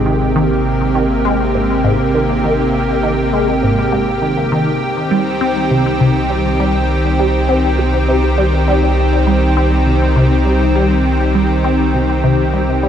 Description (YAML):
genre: ambient, sequencer-driven space music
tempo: 101 BPM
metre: 4/4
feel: straight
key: C minor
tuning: A4 = 440 Hz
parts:
  - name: lush unison pad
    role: sustained chords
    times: 0.0-12.9 s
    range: C3 to G4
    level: -15 LUFS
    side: equal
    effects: chorus
  - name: round analog bass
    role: bass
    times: 0.0-12.9 s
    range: Ab1 to C2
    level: -18 LUFS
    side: equal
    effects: none
  - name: resonant blip pluck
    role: riff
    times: 0.1-12.9 s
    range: Ab2 to C4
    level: -17 LUFS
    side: left 1 dB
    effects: phaser, wide subtle chorus, ping-pong delay
room: wet huge ambient reverb, RT60 7.7 s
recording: dark, warm production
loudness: -12 LUFS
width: side -9 dB against mid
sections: 0.0-12.9 A section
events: none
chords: 0.0 Abmaj7; 4.8 Cm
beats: | 0.06 0.66 1.25 1.84 | 2.44 3.03 3.63 4.22 | 4.82 5.41 6.00 6.60 | 7.19 7.79 8.38 8.97 | 9.57 10.16 10.76 11.35 | 11.94 12.54